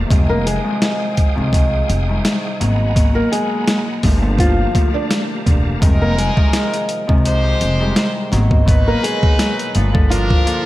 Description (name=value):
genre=hip hop, boom-bap hip-hop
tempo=84 BPM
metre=4/4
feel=swing 54% on 16ths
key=F dorian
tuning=A4 = 440 Hz
part: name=Celtic harp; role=accompaniment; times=0.0-10.7 s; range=Bb2 to A4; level=-21 LUFS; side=equal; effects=cassette tape, high-pass filter, low-pass filter
part: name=bright tonewheel organ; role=sustained chords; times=0.0-5.8 s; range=G4 to Eb6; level=-29 LUFS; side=equal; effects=chorus vibrato, fast rotary speaker, high-pass filter, low-pass filter
part: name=upright bass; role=bass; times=0.0-10.3 s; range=E1 to C2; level=-18 LUFS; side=equal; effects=none
part: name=boom bap sampler-style drum kit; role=drums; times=0.1-10.6 s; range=hi-hat, kick drum, snare drum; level=-16 LUFS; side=equal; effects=none
part: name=flamenco guitar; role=melody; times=0.3-10.6 s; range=F3 to D5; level=-22 LUFS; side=equal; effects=wide subtle chorus, high-pass filter, low-pass filter, tape echo
part: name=brilliant trumpet section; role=stabs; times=5.8-10.7 s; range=Gb3 to C5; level=-24 LUFS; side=left 1 dB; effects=high-pass filter, low-pass filter, tape echo
room=light reverb, small room ambience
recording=vinyl crackle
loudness=-14 LUFS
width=side -16 dB against mid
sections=0.0-5.8 A section; 5.8-10.7 B section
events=none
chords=0.1 Fm9; 2.6 Abm9; 4.0 Gm9; 5.8 Fm9; 8.3 Abm9; 9.7 Gm9